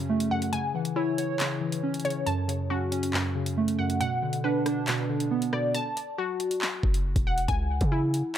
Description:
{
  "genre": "hip hop, drill",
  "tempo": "138 BPM",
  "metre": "4/4",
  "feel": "half-time",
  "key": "F# minor",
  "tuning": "A4 = 439 Hz",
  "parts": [
    { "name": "warbly lo-fi synth keys", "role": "accompaniment", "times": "0.0-5.8 s", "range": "F#2 to C#5", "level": "-27 LUFS", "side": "right 2 dB", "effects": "chorus" },
    { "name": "glassy wavetable pluck", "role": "arpeggios", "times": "0.0-8.4 s", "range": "E4 to A5", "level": "-30 LUFS", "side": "left 2 dB", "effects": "chorus, analog delay" },
    { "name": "drill drum kit", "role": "drums", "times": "0.2-8.4 s", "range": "handclaps, hi-hat, kick drum, rim click", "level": "-30 LUFS", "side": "equal", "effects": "none" },
    { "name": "hard-hitting 808-style bass", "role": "bass", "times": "6.8-8.2 s", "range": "E1 to C#3", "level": "-27 LUFS", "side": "equal", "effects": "none" }
  ],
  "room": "light reverb, digital ambience",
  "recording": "echo-heavy mix",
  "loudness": "-25 LUFS",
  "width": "side -10 dB against mid",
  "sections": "0.0-8.4 A section",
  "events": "break 0.0-5.7, 5.7-6.6",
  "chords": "0.0 F#m; 0.5 C#m; 2.3 F#m; 4.0 Bm; 5.7 F#m; 7.5 C#m"
}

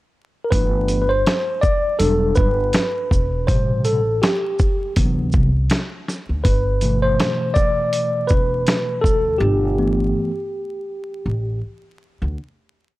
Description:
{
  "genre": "hip hop, jazz-hop",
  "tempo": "81 BPM",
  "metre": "4/4",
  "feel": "swing 59% on 16ths",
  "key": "G major",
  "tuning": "A4 = 443 Hz",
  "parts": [
    { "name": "tine electric piano", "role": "accompaniment", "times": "0.4-11.6 s", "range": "B2 to D5", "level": "-20 LUFS", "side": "equal", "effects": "medium stereo tremolo" },
    { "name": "upright bass", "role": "bass", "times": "0.5-12.4 s", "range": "E1 to D2", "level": "-21 LUFS", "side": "equal", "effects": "none" },
    { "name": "dusty soul sampler-style drum kit", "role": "drums", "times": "0.5-9.3 s", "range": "hi-hat, kick drum, shaker, snare drum", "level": "-20 LUFS", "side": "equal", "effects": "none" }
  ],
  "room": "digital ambience",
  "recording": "dry, gritty hardware recording, vinyl crackle",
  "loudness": "-17 LUFS",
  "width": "side -18 dB against mid",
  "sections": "0.0-0.5 pickup bar; 0.5-12.4 A section",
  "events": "tine electric piano solo 0.5-12.4",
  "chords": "0.0 N.C.; 0.5 G69; 2.0 Em9; 3.5 Am7; 5.0 D13; 6.4 G69"
}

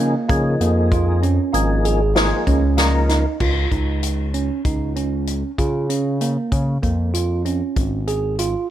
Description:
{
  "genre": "progressive instrumental, band music in an uneven meter",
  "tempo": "96 BPM",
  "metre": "5/4",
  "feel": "straight",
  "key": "Db major",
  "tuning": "A4 = 440 Hz",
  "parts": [
    { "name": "percussive tonewheel organ", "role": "accompaniment", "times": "0.0-3.3 s", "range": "F3 to Bb4", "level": "-22 LUFS", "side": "left 2 dB", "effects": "chorus vibrato, slow rotary speaker" },
    { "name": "tine electric piano", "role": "arpeggios", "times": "0.0-8.7 s", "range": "Bb3 to Ab4", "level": "-23 LUFS", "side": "right 5 dB", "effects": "none" },
    { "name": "smooth synth bass", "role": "bass", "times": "0.0-8.6 s", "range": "Ab1 to Db3", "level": "-20 LUFS", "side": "equal", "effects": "none" },
    { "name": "unplugged drum kit", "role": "drums", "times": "0.3-8.5 s", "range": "crash cymbal, hi-hat, kick drum, snare drum", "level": "-23 LUFS", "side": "left 1 dB", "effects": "none" }
  ],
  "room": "light reverb, studio ambience",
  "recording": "none",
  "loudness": "-17 LUFS",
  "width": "side -12 dB against mid",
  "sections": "0.0-3.4 A section; 3.4-8.7 B section",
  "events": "none",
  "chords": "0.0 Db6"
}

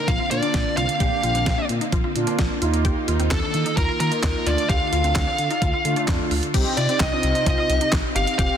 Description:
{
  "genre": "synth-pop",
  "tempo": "130 BPM",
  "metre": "4/4",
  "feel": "straight",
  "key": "unclear",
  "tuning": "A4 = 441 Hz",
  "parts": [
    { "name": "smooth overdriven lead guitar", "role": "melody", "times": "0.0-8.6 s", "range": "A4 to F5", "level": "-24 LUFS", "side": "equal", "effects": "digital delay" },
    { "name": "string machine, violas", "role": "sustained chords", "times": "0.0-8.6 s", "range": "C3 to A4", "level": "-30 LUFS", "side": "equal", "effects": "ensemble chorus" },
    { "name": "resonant blip pluck", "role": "arpeggios", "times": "0.0-8.6 s", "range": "C4 to G4", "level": "-31 LUFS", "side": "left 2 dB", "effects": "chorus, digital delay" },
    { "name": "smooth synth bass", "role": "bass", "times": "0.1-8.5 s", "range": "F1 to Eb3", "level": "-25 LUFS", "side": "equal", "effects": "none" },
    { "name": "clean 12-bit digital drum machine", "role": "drums", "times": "0.1-8.5 s", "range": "crash cymbal, handclaps, hi-hat, kick drum, snare drum", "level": "-24 LUFS", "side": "equal", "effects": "none" },
    { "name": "mellow synth brass", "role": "accompaniment", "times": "0.3-8.6 s", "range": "A3 to G4", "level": "-28 LUFS", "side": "right 2 dB", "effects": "chorus" }
  ],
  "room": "light reverb, digital ambience",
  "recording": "dense, heavily limited modern master",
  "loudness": "-19 LUFS",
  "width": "side -8 dB against mid",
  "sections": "0.0-6.5 A section; 6.5-8.6 B section",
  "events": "none",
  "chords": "0.0 Bbadd9; 2.6 Ebsus2; 4.5 Dm; 6.5 Cm"
}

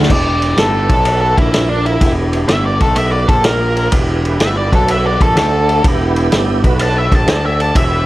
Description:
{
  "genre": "blues rock power trio and southern rock",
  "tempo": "125 BPM",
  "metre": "4/4",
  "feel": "swing 67% on 8ths",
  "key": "E minor",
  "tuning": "A4 = 440 Hz",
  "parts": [
    { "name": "overdriven picked electric bass", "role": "bass", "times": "0.0-8.1 s", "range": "E1 to D2", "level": "-16 LUFS", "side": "equal", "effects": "none" },
    { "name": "vintage drum kit", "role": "drums", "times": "0.0-7.9 s", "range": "crash cymbal, kick drum, ride cymbal, snare drum", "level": "-15 LUFS", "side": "equal", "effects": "none" },
    { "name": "octave-fuzz lead guitar", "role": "melody", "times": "0.1-8.1 s", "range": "D4 to A5", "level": "-17 LUFS", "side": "equal", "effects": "distortion" },
    { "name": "tonewheel organ", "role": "sustained chords", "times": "0.1-8.1 s", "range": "E#3 to D5", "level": "-21 LUFS", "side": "right 3 dB", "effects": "chorus vibrato, slow rotary speaker" }
  ],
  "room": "small room ambience",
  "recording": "none",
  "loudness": "-11 LUFS",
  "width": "side -16 dB against mid",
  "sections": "0.1-8.1 A section",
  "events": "lead electric guitar solo 0.1-8.1",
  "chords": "0.1 Em; 0.8 B5; 1.3 A#5; 2.0 Em; 2.7 B5; 3.2 A#5; 3.9 Em; 4.6 B5; 5.1 A#maj7; 5.4 D5; 5.8 Em; 6.5 B5; 7.0 A5; 7.3 D5"
}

